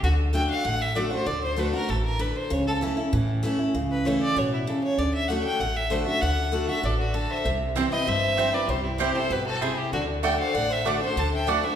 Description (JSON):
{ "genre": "bluegrass", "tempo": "194 BPM", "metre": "4/4", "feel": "straight", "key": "D mixolydian", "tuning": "A4 = 441 Hz", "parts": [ { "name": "clear fiddle", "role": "melody", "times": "0.0-11.8 s", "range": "E4 to A5", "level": "-27 LUFS", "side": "equal", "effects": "none" }, { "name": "picked steel-string acoustic guitar", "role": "accompaniment", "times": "0.0-11.8 s", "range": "G2 to F#4", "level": "-27 LUFS", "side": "left 1 dB", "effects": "none" }, { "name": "upright bass", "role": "bass", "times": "0.0-11.6 s", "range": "G1 to A2", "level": "-29 LUFS", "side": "equal", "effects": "none" }, { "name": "clear fiddle", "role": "second line", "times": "6.8-11.8 s", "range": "C4 to F#5", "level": "-32 LUFS", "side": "left 2 dB", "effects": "none" }, { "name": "mandolin", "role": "stabs", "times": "7.8-11.6 s", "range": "A3 to G5", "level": "-28 LUFS", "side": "right 6 dB", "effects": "none" } ], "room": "wet recital hall reverb, RT60 1.5 s", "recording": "recorded in a church or concert hall", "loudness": "-22 LUFS", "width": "side -9 dB against mid", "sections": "0.0-11.8 A section", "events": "none", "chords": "0.0 D; 2.5 A/C#; 5.0 D; 7.4 C; 9.9 D" }